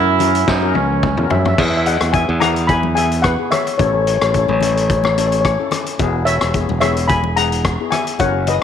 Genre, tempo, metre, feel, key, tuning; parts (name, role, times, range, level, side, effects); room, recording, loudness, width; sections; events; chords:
calypso; 109 BPM; 4/4; swing 54% on 16ths; A4 = 440 Hz
breathy trumpet; second line; 0.0-1.5 s; C#4 to E4; -18 LUFS; right 9 dB
steel pan; accompaniment; 0.0-8.5 s; B3 to A#4; -24 LUFS; left 10 dB
modern bright fingered electric bass; bass; 0.0-8.6 s; E1 to F#2; -19 LUFS; right 1 dB
vintage drum kit; drums; 0.2-8.6 s; crash cymbal, hi-hat, kick drum, rim click, snare drum, toms; -20 LUFS; left 3 dB
congas; percussion; 0.2-8.6 s; -29 LUFS; left 8 dB
steel pan; melody; 1.3-8.6 s; A4 to B5; -18 LUFS; left 3 dB
moderate echo chamber reverb, RT60 1.8 s, small room ambience; 1960s-style stereo with parts hard left and right; -14 LUFS; side -8 dB against mid
0.0-1.6 A section; 1.6-8.6 B section
drum fill 0.5-1.6
0.0 F#7; 1.6 E; 3.8 A; 6.0 E